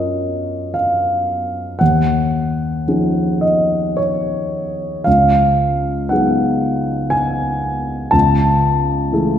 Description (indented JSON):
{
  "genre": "classical, impressionist solo piano",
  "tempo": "54-60 BPM",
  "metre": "3/4",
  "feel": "rubato",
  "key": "unclear",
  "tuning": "A4 = 440 Hz",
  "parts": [
    { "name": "warm grand piano", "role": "solo", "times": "0.0-9.4 s", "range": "Db2 to A5", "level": "-15 LUFS", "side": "equal", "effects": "none" }
  ],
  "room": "wet scoring stage reverb, RT60 1.5 s",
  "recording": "heard from further back in the room",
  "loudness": "-15 LUFS",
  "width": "side -9 dB against mid",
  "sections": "0.0-9.4 A section",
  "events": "none",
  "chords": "0.0 Gbmaj7; 1.8 Ebm11; 5.1 Db11; 8.1 Amaj7/C#"
}